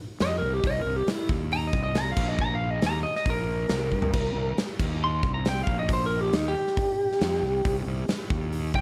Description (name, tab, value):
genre	blues rock power trio and southern rock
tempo	137 BPM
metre	4/4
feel	straight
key	unclear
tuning	A4 = 440 Hz
part	lightly driven lead guitar	melody	0.2-8.8 s	Eb4 to C6	-30 LUFS	equal	tape echo
part	fuzz fingered electric bass	bass	0.2-8.8 s	Bb1 to G2	-32 LUFS	equal	overdrive
part	big rock drum kit	drums	0.2-8.8 s	crash cymbal, hi-hat, kick drum, snare drum, toms	-31 LUFS	equal	none
room	light reverb, studio reverb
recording	none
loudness	-27 LUFS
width	mono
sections	0.0-8.8 A section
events	lead electric guitar solo 0.0-8.8; drum fill 3.9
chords	0.0 C7(no3); 1.3 Eb5; 1.7 Cm7; 2.2 Bbsus4; 2.8 Eb5; 3.3 N.C.; 3.7 C5; 4.8 Cm/Eb; 5.2 C7(no3); 5.7 N.C.; 6.3 C5; 8.3 N.C.